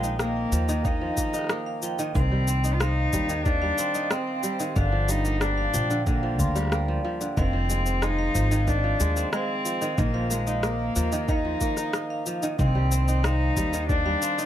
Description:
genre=folktronica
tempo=92 BPM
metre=4/4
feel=straight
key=unclear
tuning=A4 = 438 Hz
part: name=warm cello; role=melody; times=0.0-14.5 s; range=Ab3 to F4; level=-28 LUFS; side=left 1 dB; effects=vintage 12-bit sampler grit, plate reverb, digital delay
part: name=vibraphone with medium hard mallets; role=second line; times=0.0-14.5 s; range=D5 to C6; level=-34 LUFS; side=right 3 dB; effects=plate reverb, digital delay
part: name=kora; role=arpeggios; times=0.0-14.5 s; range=D3 to F4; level=-31 LUFS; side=equal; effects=plate reverb, digital delay
part: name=upright bass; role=bass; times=0.0-14.1 s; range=F1 to Eb2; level=-25 LUFS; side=equal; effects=none
part: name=electronic cabasa and rim click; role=drums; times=0.0-14.5 s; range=none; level=-31 LUFS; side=left 2 dB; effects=overdrive
part: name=electronic kick drum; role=drums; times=0.8-14.0 s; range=none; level=-27 LUFS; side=equal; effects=overdrive
room=light reverb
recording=none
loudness=-22 LUFS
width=side -11 dB against mid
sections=0.0-14.5 A section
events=none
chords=0.0 Bbsus4; 2.2 Cm; 4.8 Gm7; 7.4 Fm7; 10.0 Bbsus4; 12.6 Cm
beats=0.20 0.85 1.50 | 2.15 2.81 3.46 4.11 | 4.76 5.41 6.07 6.72 | 7.37 8.02 8.68 9.33 | 9.98 10.63 11.28 11.94 | 12.59 13.24 13.89

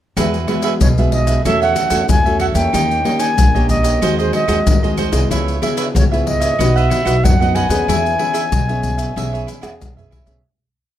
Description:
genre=samba and choro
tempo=93 BPM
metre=4/4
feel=straight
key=E major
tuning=A4 = 443 Hz
part: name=cavaquinho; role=accompaniment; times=0.2-10.4 s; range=D#4 to F#5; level=-22 LUFS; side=right 7 dB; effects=none
part: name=nylon-string guitar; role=accompaniment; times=0.2-10.4 s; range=F#2 to G#4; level=-21 LUFS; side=left 2 dB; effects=none
part: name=upright bass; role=bass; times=0.2-10.4 s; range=A#1 to F#2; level=-19 LUFS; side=equal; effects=none
part: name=maracas, surdo, pandeiro and tamborim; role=percussion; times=0.2-10.4 s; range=none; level=-19 LUFS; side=left 2 dB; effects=none
part: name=reedy silver concert flute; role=melody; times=0.8-9.8 s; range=B#4 to G#5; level=-19 LUFS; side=equal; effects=none
room=light reverb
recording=none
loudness=-13 LUFS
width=side -11 dB against mid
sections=0.2-10.4 A section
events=fade-out 7.9-10.4; drum fill 9.6-10.4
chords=0.2 Eadd9; 1.4 A6/E; 2.7 D#7; 4.0 G#7/D#; 5.3 C#m7; 6.6 B; 7.9 E6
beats=| 0.16 0.81 1.45 2.09 | 2.74 3.38 4.02 4.66 | 5.31 5.95 6.59 7.23 | 7.88 8.52 9.16 9.81

